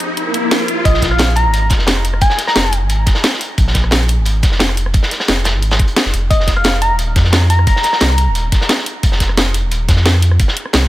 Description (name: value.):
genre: liquid drum and bass.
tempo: 176 BPM.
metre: 4/4.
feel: straight.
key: unclear.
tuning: A4 = 440 Hz.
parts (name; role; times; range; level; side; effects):
airy breathy pad; sustained chords; 0.0-0.8 s; F3 to C5; -33 LUFS; right 1 dB; chorus, phaser, sidechain pumping.
drum and bass drum kit; drums; 0.0-10.9 s; hi-hat, rim click, snare drum; -18 LUFS; equal; small room ambience.
riser and swell; sound effects; 0.0-0.9 s; none; -20 LUFS; left 1 dB; none.
soft struck synth lead; melody; 0.9-2.7, 6.3-8.3 s; Eb5 to Bb5; -20 LUFS; left 1 dB; chorus, digital delay.
warm sub bass; bass; 0.9-10.9 s; Eb1 to F2; -15 LUFS; equal; none.
crunchy breakbeat drum kit; drums; 0.9-10.8 s; hi-hat, snare drum; -20 LUFS; equal; high-pass filter on hats, small room ambience, high-pass filter on snare, high-pass filter on room.
electronic kick drum; drums; 0.9-10.5 s; none; -14 LUFS; equal; small room ambience.
room: digital ambience.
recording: none.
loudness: -11 LUFS.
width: side -16 dB against mid.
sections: 0.9-10.9 A section.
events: riser 0.0-0.9; swell 0.2-0.9; drop 0.9-10.9.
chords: 0.0 Fm7; 0.9 Bb5; 6.1 F5.